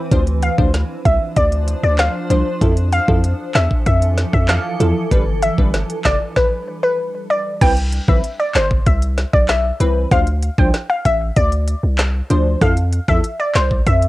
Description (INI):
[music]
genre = dancehall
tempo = 96 BPM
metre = 4/4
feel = straight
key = C major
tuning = A4 = 443 Hz
[part]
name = wavetable chord stab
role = accompaniment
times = 0.0-13.2 s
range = E3 to C5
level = -20 LUFS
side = left 1 dB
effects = sidechain pumping, cassette tape
[part]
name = granular cloud pad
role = sustained chords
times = 0.0-6.4 s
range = E3 to C5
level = -27 LUFS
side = right 1 dB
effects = built-in reverb, sidechain pumping, cassette tape
[part]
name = warm 808-style bass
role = bass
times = 0.1-14.1 s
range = F1 to F2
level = -17 LUFS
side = equal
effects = none
[part]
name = island pop drum kit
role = drums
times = 0.1-14.1 s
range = crash cymbal, handclaps, hi-hat, kick drum, rim click, snare drum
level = -18 LUFS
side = equal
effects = cassette tape
[part]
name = glassy wavetable pluck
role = melody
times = 0.4-14.0 s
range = B4 to G5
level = -20 LUFS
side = left 1 dB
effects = chorus, cassette tape
[sound]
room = little or no reverb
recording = home recording on cassette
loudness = -14 LUFS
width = side -17 dB against mid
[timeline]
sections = 0.0-7.6 A section; 7.6-14.1 B section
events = none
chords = 0.1 Dm7; 2.6 Fmaj7; 5.1 G; 7.6 Cmaj7; 10.1 Dm7; 12.6 Fmaj7